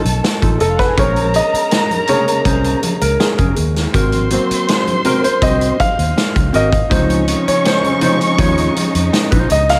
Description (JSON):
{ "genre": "lush 1970s-style soul", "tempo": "81 BPM", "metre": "4/4", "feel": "straight", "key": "Db major", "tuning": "A4 = 440 Hz", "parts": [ { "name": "dark studio violin section", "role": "second line", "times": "0.0-9.5 s", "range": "Db4 to Db6", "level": "-23 LUFS", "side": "equal", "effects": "none" }, { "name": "warm baby grand piano", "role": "accompaniment", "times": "0.0-9.8 s", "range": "Db3 to F5", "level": "-20 LUFS", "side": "equal", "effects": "none" }, { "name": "mellow electric guitar", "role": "riff", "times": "0.0-9.7 s", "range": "C4 to Db5", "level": "-23 LUFS", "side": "equal", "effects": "none" }, { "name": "vintage muted fingered electric bass", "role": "bass", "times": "0.0-9.8 s", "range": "F1 to F2", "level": "-20 LUFS", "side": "equal", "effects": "none" }, { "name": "vintage drum kit", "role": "drums", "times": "0.1-9.8 s", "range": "hi-hat, kick drum, snare drum", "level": "-21 LUFS", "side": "equal", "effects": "none" }, { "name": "congas", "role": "percussion", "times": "0.4-9.7 s", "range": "none", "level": "-29 LUFS", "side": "equal", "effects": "none" }, { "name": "dark studio string section", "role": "sustained chords", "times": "6.9-9.8 s", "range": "Db3 to Eb4", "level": "-25 LUFS", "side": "equal", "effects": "none" } ], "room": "light reverb", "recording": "none", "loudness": "-15 LUFS", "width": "mono", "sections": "0.0-9.8 A section", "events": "grand piano solo 0.0-9.8", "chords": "0.0 F7alt; 1.0 Bbm7; 3.9 Ab9; 6.9 Dbmaj9", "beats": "0.23 | 0.98 1.72 2.46 3.20 | 3.94 4.68 5.42 6.17 | 6.91 7.65 8.39 9.13" }